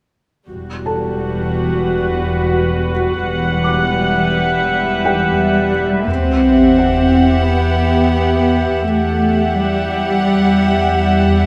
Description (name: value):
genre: cinematic, suspense film score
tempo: 86 BPM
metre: 4/4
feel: straight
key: E minor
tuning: A4 = 440 Hz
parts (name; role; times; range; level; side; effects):
- warm studio viola section; accompaniment; 0.5-5.8 s; G3 to F#5; -21 LUFS; equal; none
- evolving wavetable pad; sustained chords; 1.2-11.5 s; F#4 to F#5; -23 LUFS; equal; chorus, built-in reverb
- dark chamber cello section; bass; 0.5-11.5 s; E2 to C4; -19 LUFS; equal; none
- dark symphonic double bass section; bass; 0.5-11.5 s; E1 to E2; -23 LUFS; equal; none
- felt-muted upright piano; texture; 0.9-11.5 s; G4 to D6; -28 LUFS; equal; none
- warm chamber violin section; second line; 6.1-11.5 s; G4 to F#5; -23 LUFS; equal; none
- sub drop; sound effects; 6.1-8.9 s; none; -24 LUFS; equal; none
room: light reverb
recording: none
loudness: -15 LUFS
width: mono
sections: 0.5-6.1 A section; 6.1-11.5 B section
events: impact 6.1-8.9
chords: 0.5 Emadd9